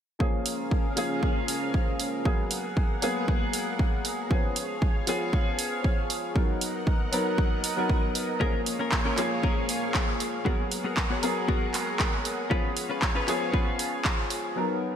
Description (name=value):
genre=nu-disco, nu disco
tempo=117 BPM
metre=4/4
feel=swing 53% on 16ths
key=Db mixolydian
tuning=A4 = 441 Hz
part: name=warm baby grand piano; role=accompaniment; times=0.2-15.0 s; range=F3 to Bb4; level=-30 LUFS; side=left 1 dB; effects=analog chorus, ping-pong delay
part: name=string machine, full ensemble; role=sustained chords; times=0.2-14.5 s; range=Bb3 to Gb5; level=-34 LUFS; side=right 1 dB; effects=ensemble chorus, sidechain pumping
part: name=electronic kick drum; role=drums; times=0.2-14.2 s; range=none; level=-26 LUFS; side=equal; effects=overdrive
part: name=house drum kit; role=drums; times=0.5-14.4 s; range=handclaps, hi-hat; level=-31 LUFS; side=right 1 dB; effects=overdrive, gated reverb
part: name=direct-recorded clean electric guitar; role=riff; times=8.4-14.1 s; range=Cb4 to Db5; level=-33 LUFS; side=left 3 dB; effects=wide subtle chorus, ping-pong delay
room=moderate lush hall reverb, RT60 2.3 s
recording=bright 1980s-style digital production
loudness=-25 LUFS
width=side -9 dB against mid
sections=0.2-15.0 A section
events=none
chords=0.2 Bbm7; 2.3 Abm9; 4.3 Db7; 6.4 Cbmaj7; 8.4 Bbm7; 10.5 Abm9; 12.5 Db7